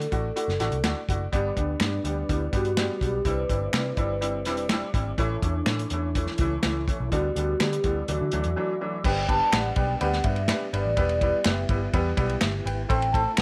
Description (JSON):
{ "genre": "uptempo 1960s-style soul", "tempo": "124 BPM", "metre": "4/4", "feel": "straight", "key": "G major", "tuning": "A4 = 444 Hz", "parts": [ { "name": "vibraphone with soft mallets", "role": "melody", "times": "0.0-13.4 s", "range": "D4 to A5", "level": "-31 LUFS", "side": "equal", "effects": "slapback echo" }, { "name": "clear upright piano", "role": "accompaniment", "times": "0.0-13.4 s", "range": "D3 to G5", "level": "-33 LUFS", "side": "equal", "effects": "none" }, { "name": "vintage muted picked electric bass", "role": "bass", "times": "0.0-13.4 s", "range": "E1 to D3", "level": "-31 LUFS", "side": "equal", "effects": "none" }, { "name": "warm soul drum kit", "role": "drums", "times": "0.0-13.4 s", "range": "crash cymbal, hi-hat, kick drum, ride cymbal, snare drum", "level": "-30 LUFS", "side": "equal", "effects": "none" }, { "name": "finger snaps", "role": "percussion", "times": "0.8-13.4 s", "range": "none", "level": "-34 LUFS", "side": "equal", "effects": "none" }, { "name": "mellow tonewheel organ", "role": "sustained chords", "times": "1.3-13.4 s", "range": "G3 to E5", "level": "-41 LUFS", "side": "equal", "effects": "none" } ], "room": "little or no reverb", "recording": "none", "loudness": "-26 LUFS", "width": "mono", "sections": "0.0-9.0 A section; 9.0-13.4 B section", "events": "none", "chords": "0.0 Dadd9; 1.3 G; 3.3 Cadd9; 5.2 A; 7.1 G/D; 8.1 Dadd9; 9.0 G; 11.0 Em; 12.9 Am", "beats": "0.36 0.84 | 1.32 1.81 2.29 2.77 | 3.25 3.74 4.22 4.70 | 5.18 5.67 6.15 6.63 | 7.11 7.60 8.08 8.56 | 9.04 9.53 10.01 10.49 | 10.97 11.46 11.94 12.42 | 12.90 13.38" }